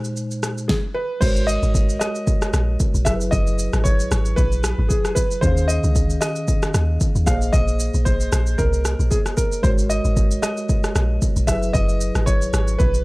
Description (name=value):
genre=amapiano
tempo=114 BPM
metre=4/4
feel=swing 55% on 16ths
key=unclear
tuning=A4 = 442 Hz
part: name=mellow tine electric piano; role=accompaniment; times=0.0-13.0 s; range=Bb2 to F5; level=-27 LUFS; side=equal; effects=medium stereo tremolo
part: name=deep house drum kit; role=drums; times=0.0-13.0 s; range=crash cymbal, kick drum, rim click, shaker, snare drum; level=-21 LUFS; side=equal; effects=none
part: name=warm concert grand piano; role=melody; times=0.7-13.0 s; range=Ab4 to F5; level=-26 LUFS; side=equal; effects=analog delay
part: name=deep log drum bass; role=bass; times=1.2-13.0 s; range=Gb1 to Eb2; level=-20 LUFS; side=equal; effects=none
room=little or no reverb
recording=dry, gritty hardware recording, transformer saturation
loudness=-17 LUFS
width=side -22 dB against mid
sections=0.0-1.2 A section; 1.2-13.0 B section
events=none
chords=0.0 Bb9sus4; 1.2 Ab9sus4; 3.1 Gb9sus4; 5.4 Eb9sus4; 7.3 Bb9sus4; 9.6 Ab9sus4; 11.5 Gb9sus4